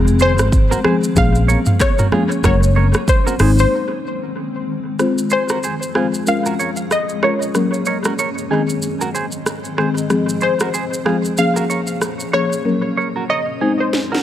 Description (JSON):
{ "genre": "afrobeats", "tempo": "94 BPM", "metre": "4/4", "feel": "swing 58% on 16ths", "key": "Bb minor", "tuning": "A4 = 438 Hz", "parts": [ { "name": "buzzing marimba with soft mallets", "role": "accompaniment", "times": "0.0-13.8 s", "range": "Eb3 to C5", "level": "-20 LUFS", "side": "left 3 dB", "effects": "none" }, { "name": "granular cloud pad", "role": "sustained chords", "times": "0.0-14.2 s", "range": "F2 to Eb5", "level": "-26 LUFS", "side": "equal", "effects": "built-in reverb" }, { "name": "vintage muted fingered electric bass", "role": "bass", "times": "0.0-3.6 s", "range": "F1 to Bb1", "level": "-15 LUFS", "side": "equal", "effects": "none" }, { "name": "afro-pop drum kit", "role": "drums", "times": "0.1-14.2 s", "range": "handclaps, hi-hat, kick drum, rim click, shaker, snare drum, toms", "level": "-20 LUFS", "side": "equal", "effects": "analog delay" }, { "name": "glassy wavetable pluck", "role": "melody", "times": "0.2-14.2 s", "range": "C5 to F5", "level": "-21 LUFS", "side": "left 2 dB", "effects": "chorus, analog delay" }, { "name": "clean electric guitar", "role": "riff", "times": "0.2-14.2 s", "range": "Eb4 to Db5", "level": "-24 LUFS", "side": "right 5 dB", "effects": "analog delay" }, { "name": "congas", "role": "percussion", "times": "0.2-3.6 s", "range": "none", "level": "-26 LUFS", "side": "right 6 dB", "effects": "analog delay" } ], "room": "light reverb, digital ambience", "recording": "echo-heavy mix", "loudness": "-15 LUFS", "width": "side -11 dB against mid", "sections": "0.0-5.0 A section; 5.0-14.2 B section", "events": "break 3.7-5.0; drum fill 13.9", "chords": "0.0 Fm; 1.2 Bbm7; 2.4 Gb; 3.4 Ab; 5.0 Fm; 6.3 Bbm7; 7.5 Gb; 8.5 Ab; 10.1 Fm; 11.4 Bbm7; 12.7 Gb; 13.6 Ab" }